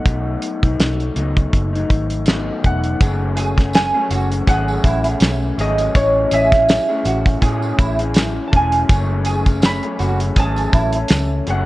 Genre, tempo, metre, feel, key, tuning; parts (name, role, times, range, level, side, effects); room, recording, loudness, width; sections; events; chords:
indie pop, bedroom pop; 82 BPM; 4/4; swing 55% on 16ths; F# dorian; A4 = 443 Hz
Celtic harp; melody; 0.0-11.7 s; C#5 to B5; -20 LUFS; right 2 dB; analog chorus
electric guitar through a small old amp; accompaniment; 0.0-11.7 s; B2 to G#4; -23 LUFS; left 3 dB; wide subtle chorus, warbly pitch drift
vintage muted fingered electric bass; bass; 0.1-11.7 s; E1 to A2; -21 LUFS; equal
damped 70s drum kit; drums; 0.1-11.7 s; hi-hat, kick drum, snare drum; -16 LUFS; equal; vintage 12-bit sampler grit
tambourine; percussion; 3.0-11.3 s; -39 LUFS; right 4 dB
electric guitar through a small old amp; second line; 3.4-10.9 s; E4 to G#4; -26 LUFS; right 3 dB; ensemble chorus, tape echo
light reverb, studio ambience; worn, warbling old tape, cassette tape, warbly pitch drift; -15 LUFS; side -17 dB against mid
0.0-3.0 A section; 3.0-11.7 B section
0.0 B7; 3.0 F#madd9; 6.0 Amaj7; 8.9 F#madd9